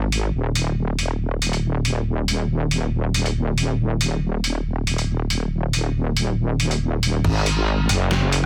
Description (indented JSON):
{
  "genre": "deep dubstep",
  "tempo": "139 BPM",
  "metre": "4/4",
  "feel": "half-time",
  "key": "unclear",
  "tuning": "A4 = 440 Hz",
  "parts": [
    { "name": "wobble bass", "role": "bass", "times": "0.0-8.5 s", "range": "D#1 to G#1", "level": "-23 LUFS", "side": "equal", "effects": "chorus" },
    { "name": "trip hop sampler-style drum kit", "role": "drums", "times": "0.1-8.5 s", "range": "crash cymbal, hi-hat, rim click, snare drum", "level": "-26 LUFS", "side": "equal", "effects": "none" },
    { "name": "electronic kick drum", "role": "drums", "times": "7.2-7.3 s", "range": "none", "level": "-26 LUFS", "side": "equal", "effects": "none" }
  ],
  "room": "little or no reverb",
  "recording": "none",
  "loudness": "-22 LUFS",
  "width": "mono",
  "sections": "0.0-7.2 A section; 7.2-8.5 B section",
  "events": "drop 7.2-8.5",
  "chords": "none"
}